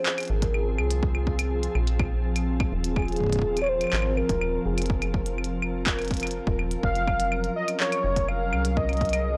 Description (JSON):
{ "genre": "IDM", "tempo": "124 BPM", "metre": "4/4", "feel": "straight", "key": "F phrygian", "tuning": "A4 = 441 Hz", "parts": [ { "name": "warm velvety synth lead", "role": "melody", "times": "0.0-9.4 s", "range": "Ab4 to F5", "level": "-30 LUFS", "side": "equal", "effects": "chorus, analog delay, shimmer reverb" }, { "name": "glassy FM pad", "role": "sustained chords", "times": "0.0-9.4 s", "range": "F3 to Bb4", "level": "-33 LUFS", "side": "equal", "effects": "ensemble chorus, built-in reverb, shimmer reverb" }, { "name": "glitchy drum kit", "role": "drums", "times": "0.1-9.2 s", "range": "claves, handclaps, hi-hat", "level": "-33 LUFS", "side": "equal", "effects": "small room ambience" }, { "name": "metallic FM bass", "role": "bass", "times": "0.3-9.4 s", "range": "Eb1 to C2", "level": "-30 LUFS", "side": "equal", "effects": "none" }, { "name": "electronic kick drum", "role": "drums", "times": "0.4-9.1 s", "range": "none", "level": "-31 LUFS", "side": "equal", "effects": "small room ambience" } ], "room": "light reverb", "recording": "dry, gritty hardware recording, transformer saturation, cassette tape", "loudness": "-26 LUFS", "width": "mono", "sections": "0.0-9.4 A section", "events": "none", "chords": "0.0 Fm7; 6.8 Gb6", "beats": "0.06 0.54 | 1.03 1.51 2.00 2.48 | 2.96 3.45 3.93 4.41 | 4.90 5.38 5.87 6.35 | 6.83 7.32 7.80 8.29 | 8.77 9.25" }